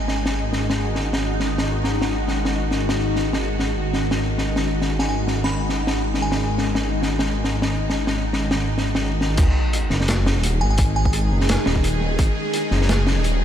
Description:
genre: half-time drum and bass.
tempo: 171 BPM.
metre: 4/4.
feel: swing 54% on 16ths, half-time.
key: unclear.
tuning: A4 = 439 Hz.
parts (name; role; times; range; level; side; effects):
bowed-like drone; sustained chords; 0.0-13.4 s; D#3 to G#4; -25 LUFS; left 1 dB; built-in reverb, phaser, vintage 12-bit sampler grit, sidechain pumping.
dark detuned saw bass; bass; 0.0-13.4 s; D#1 to G#1; -23 LUFS; equal; tube saturation.
crunchy breakbeat drum kit; drums; 0.1-13.3 s; crash cymbal, hi-hat, snare drum; -24 LUFS; equal; none.
glassy synth bell; melody; 5.0-6.5, 10.6-11.1 s; G#5 to B5; -32 LUFS; equal; chorus, diffuse ambient delay.
electronic kick drum; drums; 9.4-12.3 s; none; -20 LUFS; equal; overdrive.
sub drop; sound effects; 9.4-10.8 s; none; -24 LUFS; equal; none.
room: moderate huge ambient reverb, RT60 7.4 s.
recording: dreamy mix soaked in reverb.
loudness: -19 LUFS.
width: side -10 dB against mid.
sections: 0.0-9.4 A section; 9.4-13.4 B section.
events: drop 9.4-13.4; impact 9.4-10.8.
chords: 0.0 G#5.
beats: 0.26 0.61 | 0.96 1.31 1.66 2.01 | 2.36 2.71 3.06 3.42 | 3.77 4.12 4.47 4.82 | 5.17 5.52 5.87 6.22 | 6.57 6.92 7.28 7.63 | 7.98 8.33 8.68 9.03 | 9.38 9.73 10.08 10.43 | 10.78 11.13 11.49 11.84 | 12.19 12.54 12.89 13.24.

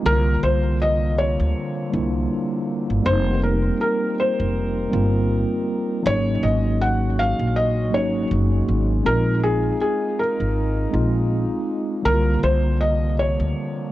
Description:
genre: lo-fi hip hop.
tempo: 80 BPM.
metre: 4/4.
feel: swing 58% on 16ths.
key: unclear.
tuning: A4 = 440 Hz.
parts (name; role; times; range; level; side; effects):
mellow tine electric piano; accompaniment; 0.0-13.9 s; D3 to F4; -24 LUFS; equal; medium stereo tremolo, low-pass filter.
warm French horn section; sustained chords; 0.0-13.9 s; C3 to Bb4; -32 LUFS; equal; low-pass filter.
felt-muted upright piano; melody; 0.1-13.9 s; Ab4 to Gb5; -23 LUFS; left 1 dB; low-pass filter, tape echo.
upright bass; bass; 0.1-13.5 s; F1 to D2; -21 LUFS; equal; none.
room: little or no reverb.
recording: cassette tape.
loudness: -18 LUFS.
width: side -15 dB against mid.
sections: 0.0-13.9 A section.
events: none.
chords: 0.0 C9sus4; 3.0 F9sus4; 6.0 Ab9sus4; 9.0 Bb9sus4; 12.0 C9sus4.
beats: | 0.04 0.79 1.54 2.29 | 3.04 3.79 4.54 5.29 | 6.04 6.79 7.54 8.29 | 9.04 9.79 10.54 11.29 | 12.04 12.79 13.54.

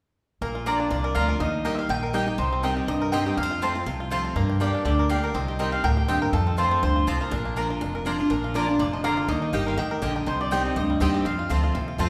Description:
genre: bluegrass.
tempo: 244 BPM.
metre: 4/4.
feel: swing 54% on 8ths.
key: Bb major.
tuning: A4 = 439 Hz.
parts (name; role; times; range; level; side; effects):
bluegrass banjo; melody; 0.4-12.1 s; F3 to Bb4; -35 LUFS; equal; none.
mandolin; melody; 0.4-11.5 s; A4 to G5; -32 LUFS; equal; none.
picked steel-string acoustic guitar; accompaniment; 0.4-12.1 s; F2 to G4; -30 LUFS; equal; none.
upright bass; bass; 0.4-12.1 s; F1 to G2; -30 LUFS; equal; none.
mandolin; stabs; 0.7-12.1 s; Bb3 to Bb5; -33 LUFS; equal; none.
room: wet recital hall reverb, RT60 1.6 s.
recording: recorded in a church or concert hall.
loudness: -25 LUFS.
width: mono.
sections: 0.4-8.3 A section; 8.3-12.1 A section.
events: none.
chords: 0.4 Bb; 1.4 Eb; 2.4 Cm; 3.4 F; 4.4 Gm; 5.3 Cm; 6.3 F; 7.3 Bb; 9.3 Eb; 10.3 Cm; 11.3 F.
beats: | 0.42 0.67 0.91 1.16 | 1.41 1.65 1.90 2.14 | 2.39 2.64 2.88 3.13 | 3.38 3.62 3.87 4.12 | 4.36 4.61 4.85 5.10 | 5.35 5.59 5.84 6.09 | 6.33 6.58 6.83 7.07 | 7.32 7.57 7.81 8.06 | 8.30 8.55 8.79 9.04 | 9.29 9.53 9.78 10.03 | 10.27 10.52 10.76 11.01 | 11.25 11.50 11.75 11.99.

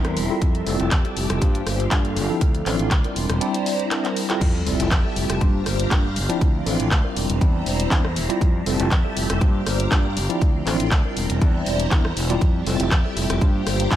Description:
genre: filtered disco house.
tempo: 120 BPM.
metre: 4/4.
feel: straight.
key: F major.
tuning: A4 = 436 Hz.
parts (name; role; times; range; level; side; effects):
tine electric piano; accompaniment; 0.0-14.0 s; F3 to D5; -25 LUFS; equal; overdrive, fast stereo tremolo, phaser, sidechain pumping, low-pass filter.
phased string machine; sustained chords; 0.0-14.0 s; E4 to C6; -30 LUFS; equal; ensemble chorus, phaser, sidechain pumping, low-pass filter.
growling fingered electric bass; bass; 0.0-14.0 s; E1 to G2; -25 LUFS; equal; overdrive, sidechain pumping, low-pass filter.
house drum kit; drums; 0.0-14.0 s; crash cymbal, handclaps, hi-hat, rim click; -27 LUFS; left 1 dB; sidechain pumping on hats, studio reverb, sidechain pumping on cymbals.
electronic kick drum; drums; 0.4-14.0 s; none; -19 LUFS; equal; studio reverb.
sub drop; sound effects; 4.5-6.4 s; none; -32 LUFS; equal; none.
room: little or no reverb.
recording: none.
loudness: -18 LUFS.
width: side -12 dB against mid.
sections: 0.0-4.4 A section; 4.4-14.0 B section.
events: drum fill 4.0-4.4; drop 4.4-14.0; impact 4.4-6.4.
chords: 0.4 Fmaj9; 1.4 Gm7; 2.4 Dm7; 3.2 C7/E; 4.4 Fmaj9; 5.4 Gm7; 6.4 Dm7; 7.2 C7/E; 8.4 Fmaj9; 9.4 Gm7; 10.4 Dm7; 11.2 C7/E; 12.4 Fmaj9; 13.4 Gm7.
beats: | 0.41 0.92 1.42 1.92 | 2.42 2.92 3.42 3.92 | 4.42 4.92 5.42 5.92 | 6.42 6.92 7.42 7.92 | 8.41 8.91 9.41 9.91 | 10.41 10.91 11.41 11.91 | 12.41 12.91 13.41 13.91.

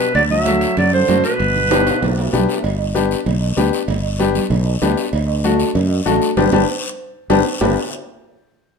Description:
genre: latin, cumbia.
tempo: 193 BPM.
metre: 4/4.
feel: straight.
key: G major.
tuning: A4 = 441 Hz.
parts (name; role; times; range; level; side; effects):
bright clarinet; melody; 0.0-2.3 s; B4 to E5; -17 LUFS; right 2 dB; none.
bright trombone; second line; 0.0-2.3 s; B2 to F#3; -25 LUFS; left 2 dB; none.
clear upright piano; accompaniment; 0.0-7.8 s; A3 to G4; -18 LUFS; left 6 dB; none.
sustaining fretless electric bass; bass; 0.1-7.8 s; G1 to F#2; -19 LUFS; right 1 dB; none.
congas; percussion; 0.1-7.7 s; none; -24 LUFS; right 7 dB; none.
guiro; percussion; 0.1-7.7 s; none; -30 LUFS; left 5 dB; none.
timbales and cowbell; percussion; 0.1-7.7 s; none; -26 LUFS; right 5 dB; none.
room: moderate studio reverb, RT60 0.8 s.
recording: minimal, uncompressed stereo recording.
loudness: -14 LUFS.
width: side -5 dB against mid.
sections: 0.0-2.6 A section; 2.6-7.6 B section; 7.6-8.8 C section.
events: drum fill 1.7-2.6, 7.0-7.6; band accent 6.4-7.6.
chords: 0.2 D7; 1.4 G; 5.1 D; 6.4 G.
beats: | 0.15 0.46 0.78 1.09 | 1.40 1.71 2.02 2.33 | 2.64 2.95 3.27 3.58 | 3.89 4.20 4.51 4.82 | 5.13 5.44 5.75 6.06 | 6.37 6.68 6.99 7.30 | 7.61.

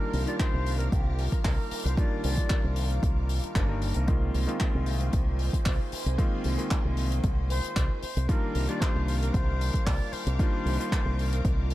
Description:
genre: nu-disco, nu disco.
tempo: 114 BPM.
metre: 4/4.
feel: straight.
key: C minor.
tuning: A4 = 436 Hz.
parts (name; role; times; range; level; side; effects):
concert flute; melody; 0.0-2.7, 7.5-11.7 s; G4 to D5; -37 LUFS; left 1 dB; ping-pong delay.
bright electric grand piano; accompaniment; 0.0-11.7 s; Eb3 to Bb4; -34 LUFS; left 1 dB; sidechain pumping, low-pass filter, ping-pong delay.
string machine, full ensemble; sustained chords; 0.0-11.7 s; Bb4 to F6; -41 LUFS; right 1 dB; phaser, ensemble chorus, sidechain pumping.
fingered electric bass with an envelope filter; bass; 0.1-11.7 s; G1 to C2; -28 LUFS; equal; none.
tight funk drum kit; drums; 0.1-11.7 s; handclaps, hi-hat; -37 LUFS; left 2 dB; none.
electronic kick drum; drums; 0.4-11.6 s; none; -27 LUFS; equal; overdrive.
room: small room ambience.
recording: dark, warm production.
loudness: -25 LUFS.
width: side -16 dB against mid.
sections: 0.0-11.7 A section.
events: none.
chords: 0.0 Cm11; 4.1 Bb9sus4/C; 8.0 Cm11.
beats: 0.40 0.93 1.45 | 1.98 2.50 3.03 3.56 | 4.08 4.61 5.13 5.66 | 6.19 6.71 7.24 7.77 | 8.29 8.82 9.35 9.87 | 10.40 10.93 11.45.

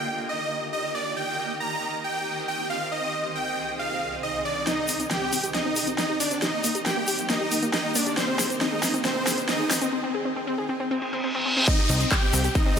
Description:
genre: uplifting trance.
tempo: 137 BPM.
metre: 4/4.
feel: straight.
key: C minor.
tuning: A4 = 438 Hz.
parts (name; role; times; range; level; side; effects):
supersaw chords; melody; 0.0-12.8 s; C4 to Bb5; -27 LUFS; right 1 dB; sidechain pumping, dub echo.
shimmering ambient pad; sustained chords; 0.0-12.8 s; C2 to Eb5; -34 LUFS; equal; chorus, built-in reverb, phaser, sidechain pumping.
wide unison pluck; arpeggios; 4.7-12.8 s; Bb3 to Ab4; -30 LUFS; left 2 dB; sidechain pumping, dub echo.
big-room dance drum kit; drums; 4.7-12.8 s; crash cymbal, handclaps, hi-hat, snare drum; -28 LUFS; equal; overdrive, high-pass filter on snare, low-pass filter on snare, sidechain pumping on hats, high-pass filter on hats, low-pass filter on hats, sidechain pumping on cymbals, high-pass filter on cymbals, low-pass filter on cymbals.
tube shaker; percussion; 4.7-12.8 s; none; -31 LUFS; left 4 dB; none.
riser, reverse cymbal and downlifter; sound effects; 6.6-12.8 s; none; -30 LUFS; equal; none.
electronic kick drum; drums; 11.7-12.6 s; none; -22 LUFS; equal; overdrive.
plucky analog bass; bass; 11.9-12.8 s; C2; -24 LUFS; equal; sidechain pumping.
room: moderate huge ambient reverb, RT60 5.3 s.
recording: none.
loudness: -23 LUFS.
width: side -7 dB against mid.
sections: 0.0-4.7 A section; 4.7-11.7 B section; 11.7-12.8 C section.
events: build-up 4.7-11.7; drum fill 4.7-9.9; filter sweep on synth arpeggio sound 4.7-11.7; reverse cymbal 11.0-11.7; drop 11.7-12.8.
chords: 0.0 Eb; 1.2 Cm; 2.9 Ab/C; 4.7 Cm; 6.4 Eb; 8.2 Ab; 9.9 N.C.; 11.7 Cm.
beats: 0.29 0.73 | 1.17 1.60 2.04 2.48 | 2.92 3.36 3.79 4.23 | 4.67 5.11 5.54 5.98 | 6.42 6.86 7.30 7.74 | 8.17 8.61 9.05 9.49 | 9.93 10.36 10.80 11.24 | 11.68 12.12 12.55.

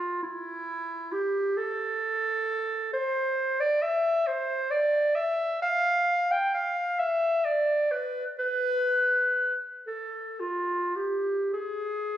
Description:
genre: classical, free, expressive piece for unaccompanied clarinet.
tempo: 34-45 BPM (dotted quarters).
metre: 6/8.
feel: rubato.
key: unclear.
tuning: A4 = 443 Hz.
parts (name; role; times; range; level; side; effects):
mellow clarinet; solo; 0.0-12.2 s; E4 to G5; -25 LUFS; equal; none.
room: moderate scoring stage reverb, RT60 1.8 s.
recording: recorded on a phone in the room, club reverb, compression.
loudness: -25 LUFS.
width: side -11 dB against mid.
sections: 0.0-12.2 A section.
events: none.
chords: none.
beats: | 0.23 1.59 | 2.94 4.28 | 5.63 7.00 | 8.40 9.89 | 11.54.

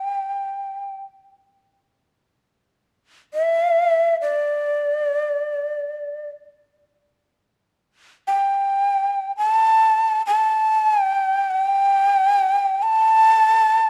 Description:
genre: japanese traditional, Japanese chamber music.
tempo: free time.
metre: none.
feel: none.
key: unclear.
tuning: A4 = 440 Hz.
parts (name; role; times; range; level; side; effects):
breathy reedy shakuhachi; solo; 0.0-13.9 s; D5 to A5; -19 LUFS; equal; none.
room: moderate recital hall reverb, RT60 1.5 s.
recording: dark, warm production.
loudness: -19 LUFS.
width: mono.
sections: 0.0-7.3 A section; 7.3-13.9 A section.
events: none.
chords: none.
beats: free time.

